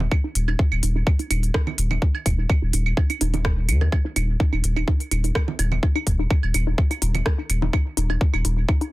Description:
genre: minimal techno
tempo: 126 BPM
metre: 4/4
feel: swing 53% on 16ths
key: unclear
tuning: A4 = 441 Hz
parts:
  - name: saturated sub bass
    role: bass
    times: 0.0-8.6 s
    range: Eb1 to Eb2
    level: -21 LUFS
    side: equal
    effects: sidechain pumping
  - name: congas and claves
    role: percussion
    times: 0.0-8.8 s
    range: none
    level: -30 LUFS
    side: right 8 dB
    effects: dub echo
  - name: hollow square pluck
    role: riff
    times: 0.1-8.9 s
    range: Eb4 to Bb4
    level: -31 LUFS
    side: equal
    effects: chorus, phaser, sidechain pumping, tape echo
  - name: electronic kick drum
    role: drums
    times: 0.1-8.8 s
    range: none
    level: -20 LUFS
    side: equal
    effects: none
  - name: minimal click drum kit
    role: drums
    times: 0.4-8.9 s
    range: hi-hat, rim click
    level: -27 LUFS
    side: equal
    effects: none
room: little or no reverb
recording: dense, heavily limited modern master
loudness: -19 LUFS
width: side -18 dB against mid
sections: 0.0-8.9 A section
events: filter sweep on synth arpeggio sound 0.0-8.9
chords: 0.0 Eb5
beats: | 0.12 0.59 1.07 1.54 | 2.02 2.50 2.97 3.45 | 3.92 4.40 4.88 5.35 | 5.83 6.30 6.78 7.26 | 7.73 8.21 8.69

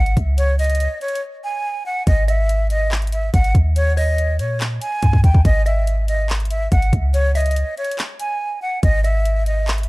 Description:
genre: hip hop, trap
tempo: 142 BPM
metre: 4/4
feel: half-time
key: unclear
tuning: A4 = 439 Hz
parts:
  - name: breathy bright concert flute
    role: melody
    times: 0.0-9.7 s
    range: C#5 to G#5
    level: -23 LUFS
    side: equal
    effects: digital delay
  - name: clean 808-style bass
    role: bass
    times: 0.0-9.9 s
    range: G#1 to A#2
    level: -17 LUFS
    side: equal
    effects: none
  - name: trap drum kit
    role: drums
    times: 0.1-9.9 s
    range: handclaps, hi-hat, kick drum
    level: -19 LUFS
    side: equal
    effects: none
  - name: mallet-like synth pluck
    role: second line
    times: 2.3-9.2 s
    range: C#5 to E5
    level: -32 LUFS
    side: right 1 dB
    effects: chorus, digital delay
room: digital ambience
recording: dark, warm production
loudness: -16 LUFS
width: side -22 dB against mid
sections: 0.0-9.9 A section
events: break 1.2-2.1; silent gap 8.4-8.8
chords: 0.4 C#5; 2.1 G#5; 3.8 D#7(no3); 5.5 Emaj13/G#; 7.1 C#m; 8.8 G#5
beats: | 0.38 0.80 1.23 1.65 | 2.07 2.49 2.92 3.34 | 3.76 4.18 4.61 5.03 | 5.45 5.87 6.29 6.72 | 7.14 7.56 7.99 8.41 | 8.83 9.25 9.68

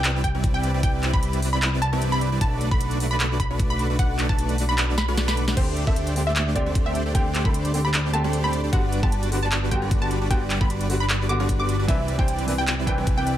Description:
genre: future bass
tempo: 152 BPM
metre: 4/4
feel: swing 54% on 16ths, half-time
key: G major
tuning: A4 = 440 Hz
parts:
  - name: wide unison pluck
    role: melody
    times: 0.0-13.4 s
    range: C5 to D6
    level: -29 LUFS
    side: equal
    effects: sidechain pumping, tape echo
  - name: dense compressed supersaw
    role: riff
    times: 0.0-13.3 s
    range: G3 to D5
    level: -28 LUFS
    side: right 1 dB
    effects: sidechain pumping
  - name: fat analog bass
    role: bass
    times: 0.0-13.4 s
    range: G1 to D2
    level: -25 LUFS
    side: equal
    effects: sidechain pumping
  - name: trap drum kit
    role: drums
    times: 0.0-13.4 s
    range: crash cymbal, handclaps, hi-hat, ride cymbal, snare drum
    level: -27 LUFS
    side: equal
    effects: overdrive
  - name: electronic kick drum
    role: drums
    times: 0.2-13.2 s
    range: none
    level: -23 LUFS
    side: equal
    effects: overdrive
  - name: clear concert grand piano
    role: accompaniment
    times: 5.6-13.3 s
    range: D3 to C5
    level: -30 LUFS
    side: right 1 dB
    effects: sidechain pumping, tape echo
room: light reverb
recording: none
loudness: -20 LUFS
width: side -12 dB against mid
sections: 0.0-13.4 A section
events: drum fill 5.0-5.6; kick drops out 5.2-5.6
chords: 0.0 Cmaj9; 2.4 Bm7; 5.6 D7sus4; 8.7 Gmaj7; 11.9 Cmaj9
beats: 0.04 0.44 | 0.83 1.23 1.62 2.02 | 2.41 2.81 3.20 3.60 | 3.99 4.38 4.78 5.17 | 5.57 5.96 6.36 6.75 | 7.15 7.54 7.94 8.33 | 8.73 9.12 9.52 9.91 | 10.31 10.70 11.10 11.49 | 11.88 12.28 12.68 13.07

